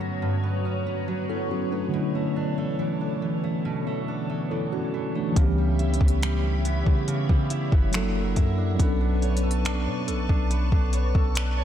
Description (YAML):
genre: contemporary R&B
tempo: 70 BPM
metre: 4/4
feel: straight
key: B minor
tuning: A4 = 444 Hz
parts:
  - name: mellow tine electric piano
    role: accompaniment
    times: 0.0-11.6 s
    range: G2 to A4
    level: -29 LUFS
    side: left 1 dB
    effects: medium stereo tremolo
  - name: glassy FM pad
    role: sustained chords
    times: 0.0-11.6 s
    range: D3 to C#6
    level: -33 LUFS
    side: left 2 dB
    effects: ensemble chorus, built-in reverb, phaser, sidechain pumping
  - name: fingerpicked steel-string acoustic guitar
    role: arpeggios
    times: 0.0-11.6 s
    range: G2 to C#5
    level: -31 LUFS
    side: right 5 dB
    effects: tape echo
  - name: soft 808-style bass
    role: bass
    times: 5.4-11.6 s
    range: F#1 to C#3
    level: -25 LUFS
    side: equal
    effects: none
  - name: smooth R&B drum kit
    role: drums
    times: 5.4-11.6 s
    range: finger snaps, hi-hat, kick drum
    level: -24 LUFS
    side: equal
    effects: none
room: light reverb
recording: dark, warm production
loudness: -22 LUFS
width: side -10 dB against mid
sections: 0.0-5.4 A section; 5.4-11.6 B section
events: none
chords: 0.0 Gmaj9#11; 1.9 Bm11; 5.4 C#m7b5; 7.9 F#7alt; 8.8 Bm9